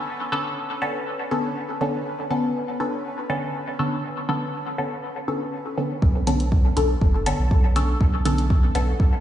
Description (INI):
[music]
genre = dub techno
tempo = 121 BPM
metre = 4/4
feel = straight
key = B minor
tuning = A4 = 440 Hz
[part]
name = bubbling stepped-filter texture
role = texture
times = 0.0-9.2 s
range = A3 to B4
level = -36 LUFS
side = left 1 dB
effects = chorus, built-in reverb, sidechain pumping
[part]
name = filtered dub chord stab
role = stabs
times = 0.3-8.9 s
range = D3 to A4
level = -24 LUFS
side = left 1 dB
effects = chorus, phaser, sidechain pumping, dub echo
[part]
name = soft dub sub bass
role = bass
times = 6.0-8.9 s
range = F#1 to B1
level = -23 LUFS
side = equal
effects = sidechain pumping
[part]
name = electronic kick drum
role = drums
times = 6.0-9.1 s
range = none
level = -18 LUFS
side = equal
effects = none
[part]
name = electronic hi-hat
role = drums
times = 6.3-8.9 s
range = none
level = -35 LUFS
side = right 2 dB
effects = low-pass filter on hats, low-pass filter on room
[sound]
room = moderate lush hall reverb, RT60 2.2 s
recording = played on a big sound system in a bare room, stone room reverb, nothing above 10.9 kHz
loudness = -21 LUFS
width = side -11 dB against mid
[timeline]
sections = 0.0-6.0 A section; 6.0-9.2 B section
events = none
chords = 0.0 Bm9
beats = | 0.07 0.57 1.06 1.56 | 2.06 2.55 3.05 3.54 | 4.04 4.54 5.03 5.53 | 6.02 6.52 7.01 7.51 | 8.01 8.50 9.00